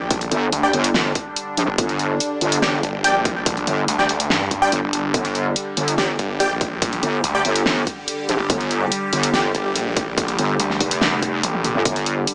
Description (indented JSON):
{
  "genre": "heavy wobble dubstep",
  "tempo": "143 BPM",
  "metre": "4/4",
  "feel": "half-time",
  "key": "G minor",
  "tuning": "A4 = 440 Hz",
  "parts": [
    { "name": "evolving wavetable pad", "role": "sustained chords", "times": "0.0-12.3 s", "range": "D3 to G4", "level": "-29 LUFS", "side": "equal", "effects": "phaser, built-in reverb, sidechain pumping" },
    { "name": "snarling distorted saw bass", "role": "bass", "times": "0.0-11.7 s", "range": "G1 to G2", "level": "-27 LUFS", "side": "equal", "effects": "distortion, overdrive" },
    { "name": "big-room dance drum kit", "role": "drums", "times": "0.1-12.3 s", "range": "hi-hat, snare drum, toms", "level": "-25 LUFS", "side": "equal", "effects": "small room ambience" },
    { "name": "electronic kick drum", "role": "drums", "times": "0.1-11.9 s", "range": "none", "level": "-28 LUFS", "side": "equal", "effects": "small room ambience" },
    { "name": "wobble bass", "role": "bass", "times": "0.3-12.3 s", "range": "F1 to Bb1", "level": "-23 LUFS", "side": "equal", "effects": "chorus, overdrive" },
    { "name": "supersaw stab", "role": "stabs", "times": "0.6-9.4 s", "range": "G4 to G5", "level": "-25 LUFS", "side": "equal", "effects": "dub echo" },
    { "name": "noise sweep", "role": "sound effects", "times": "10.9-11.9 s", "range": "none", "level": "-36 LUFS", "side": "equal", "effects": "none" }
  ],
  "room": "light reverb, digital ambience",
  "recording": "small speaker sound",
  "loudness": "-20 LUFS",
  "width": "mono",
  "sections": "0.0-12.3 A section",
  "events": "drum fill 11.4-11.9",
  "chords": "0.0 G5"
}